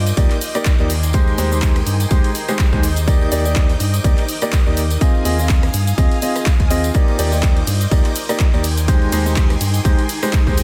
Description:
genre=piano house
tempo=124 BPM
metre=4/4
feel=swing 56% on 16ths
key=unclear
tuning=A4 = 441 Hz
part: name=string machine, violins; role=sustained chords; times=0.0-10.6 s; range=Eb5 to G6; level=-33 LUFS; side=equal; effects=ensemble chorus, sidechain pumping
part: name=organ-like FM bass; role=bass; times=0.0-10.6 s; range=Eb2 to G2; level=-21 LUFS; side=equal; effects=sidechain pumping
part: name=granular cloud pad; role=texture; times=0.0-10.6 s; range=Eb4 to D6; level=-33 LUFS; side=equal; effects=built-in reverb, sidechain pumping
part: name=house drum kit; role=drums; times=0.1-10.6 s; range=handclaps, hi-hat, ride cymbal, rim click, shaker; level=-28 LUFS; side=equal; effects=none
part: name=tambourine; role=percussion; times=0.1-10.6 s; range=none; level=-36 LUFS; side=equal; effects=none
part: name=clear upright piano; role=riff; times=0.2-10.6 s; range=Ab3 to Eb5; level=-24 LUFS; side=equal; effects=sidechain pumping, digital delay
part: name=electronic kick drum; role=drums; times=0.2-10.6 s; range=none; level=-17 LUFS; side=equal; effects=overdrive
room=digital ambience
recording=dense, heavily limited modern master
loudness=-16 LUFS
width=mono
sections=0.0-10.6 A section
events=none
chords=0.0 Ebmaj7; 0.9 Abmaj7/Eb; 2.8 Ebmaj7; 5.0 Fm7/Eb; 6.9 Ebmaj7; 8.6 Abmaj7/Eb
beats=0.17 0.66 | 1.14 1.62 2.11 2.59 | 3.08 3.56 4.04 4.53 | 5.01 5.50 5.98 6.46 | 6.95 7.43 7.92 8.40 | 8.88 9.37 9.85 10.33

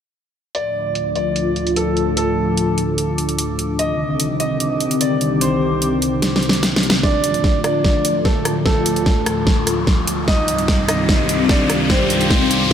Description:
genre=heavy wobble dubstep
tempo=148 BPM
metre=4/4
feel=half-time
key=D phrygian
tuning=A4 = 440 Hz
part: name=warm concert grand piano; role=melody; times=0.5-12.7 s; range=A3 to Eb5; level=-22 LUFS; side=equal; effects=lush chorus, tape echo
part: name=lush unison pad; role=sustained chords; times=0.5-12.7 s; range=C2 to F4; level=-21 LUFS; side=equal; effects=chorus, sidechain pumping
part: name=dubstep drum kit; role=drums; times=0.5-12.7 s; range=hi-hat, rim click, snare drum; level=-20 LUFS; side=equal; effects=low-pass filter on hats, low-pass filter on snare
part: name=warbly tape-like pad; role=texture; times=1.2-12.7 s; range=C4 to D6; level=-24 LUFS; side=left 3 dB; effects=chorus, built-in reverb, tremolo, phaser, sidechain pumping
part: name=electronic kick drum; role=drums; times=7.0-12.7 s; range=none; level=-18 LUFS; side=equal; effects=none
part: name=riser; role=sound effects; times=8.6-12.7 s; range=none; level=-24 LUFS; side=left 1 dB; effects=none
room=wet huge ambient reverb, RT60 4.2 s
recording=dreamy mix soaked in reverb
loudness=-15 LUFS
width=side -8 dB against mid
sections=0.5-7.0 A section; 7.0-12.7 B section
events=filter sweep on drum 0.5-7.0; drum fill 6.2-7.0, 7.0-12.7; build-up 7.0-12.7; riser 8.6-12.7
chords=0.5 Dm; 3.8 Cmadd9; 7.0 Dm; 10.3 Cmadd9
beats=| 0.55 0.95 1.36 1.76 | 2.17 2.58 2.98 3.39 | 3.79 4.20 4.60 5.01 | 5.41 5.82 6.22 6.63 | 7.03 7.44 7.84 8.25 | 8.66 9.06 9.47 9.87 | 10.28 10.68 11.09 11.49 | 11.90 12.30 12.71

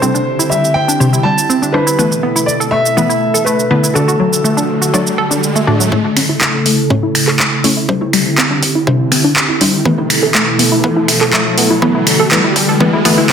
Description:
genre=progressive house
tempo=122 BPM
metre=4/4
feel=straight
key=unclear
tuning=A4 = 439 Hz
part: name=dark baby grand piano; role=melody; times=0.0-5.4 s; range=A4 to A5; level=-17 LUFS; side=left 1 dB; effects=tape echo
part: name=airy breathy pad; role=sustained chords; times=0.0-13.3 s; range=B2 to A4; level=-18 LUFS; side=equal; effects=chorus, sidechain pumping
part: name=analog pluck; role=arpeggios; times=0.0-13.3 s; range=F#3 to A4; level=-17 LUFS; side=right 1 dB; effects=chorus, sidechain pumping, tape echo
part: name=wide unison pluck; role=stabs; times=0.0-13.3 s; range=A2 to D5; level=-16 LUFS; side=left 2 dB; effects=sidechain pumping, tape echo
part: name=house drum kit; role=drums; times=0.0-13.3 s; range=finger snaps, handclaps, hi-hat, shaker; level=-14 LUFS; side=right 1 dB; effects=sidechain pumping on perc, high-pass filter on perc, high-pass filter on snare, sidechain pumping on hats, high-pass filter on hats
part: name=riser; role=sound effects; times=3.6-13.3 s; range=none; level=-22 LUFS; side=equal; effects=none
part: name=electronic kick drum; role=drums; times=5.9-13.3 s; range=none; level=-21 LUFS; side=right 1 dB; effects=high-pass filter on kick
room=wet digital room reverb, RT60 0.9 s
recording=dense, heavily limited modern master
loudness=-10 LUFS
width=side -7 dB against mid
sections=0.0-5.9 A section; 5.9-13.3 B section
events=filter sweep on synth pluck 0.0-5.9, 5.9-13.3; riser 3.6-5.9, 5.9-13.3; build-up 5.9-13.3; filter sweep on synth arpeggio sound 5.9-13.3; filter sweep on analog synth pad 5.9-13.3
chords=0.0 Cadd9; 2.0 Esus4; 4.0 D; 5.9 A; 7.9 Cadd9; 9.9 Esus4; 11.8 D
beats=| 0.02 0.51 1.00 1.49 | 1.99 2.48 2.97 3.46 | 3.95 4.45 4.94 5.43 | 5.92 6.41 6.90 7.40 | 7.89 8.38 8.87 9.36 | 9.86 10.35 10.84 11.33 | 11.82 12.31 12.81 13.30

